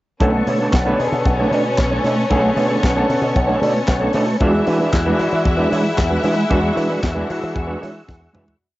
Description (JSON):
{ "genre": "disco", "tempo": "114 BPM", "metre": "4/4", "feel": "straight", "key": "B dorian", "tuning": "A4 = 440 Hz", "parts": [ { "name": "clear studio string section", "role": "second line", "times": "0.2-8.6 s", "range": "C#4 to E5", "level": "-24 LUFS", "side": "left 2 dB", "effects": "none" }, { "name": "clear baby grand piano", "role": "accompaniment", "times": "0.2-8.6 s", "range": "D3 to B4", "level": "-24 LUFS", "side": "left 1 dB", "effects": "none" }, { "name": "mellow electric guitar", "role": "accompaniment", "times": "0.2-8.5 s", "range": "G#3 to D5", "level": "-20 LUFS", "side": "right 2 dB", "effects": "harmonic tremolo" }, { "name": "tonewheel organ", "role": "sustained chords", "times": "0.2-8.6 s", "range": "G#4 to E6", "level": "-27 LUFS", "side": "equal", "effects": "overdrive, chorus vibrato, slow rotary speaker" }, { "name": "slap bass with an envelope filter", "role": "bass", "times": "0.2-8.5 s", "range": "B1 to E3", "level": "-22 LUFS", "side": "equal", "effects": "none" }, { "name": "tight funk drum kit", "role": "drums", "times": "0.2-8.6 s", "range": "handclaps, hi-hat, kick drum, snare drum, toms", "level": "-21 LUFS", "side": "equal", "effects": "none" } ], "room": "moderate booth ambience, RT60 0.3 s", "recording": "home recording on cassette, nothing above 7.7 kHz", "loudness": "-15 LUFS", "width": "side -17 dB against mid", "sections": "0.2-8.6 groove", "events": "fade-out 6.5-8.6; drum fill 8.1-8.6", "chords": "0.2 Bm9; 4.4 E9" }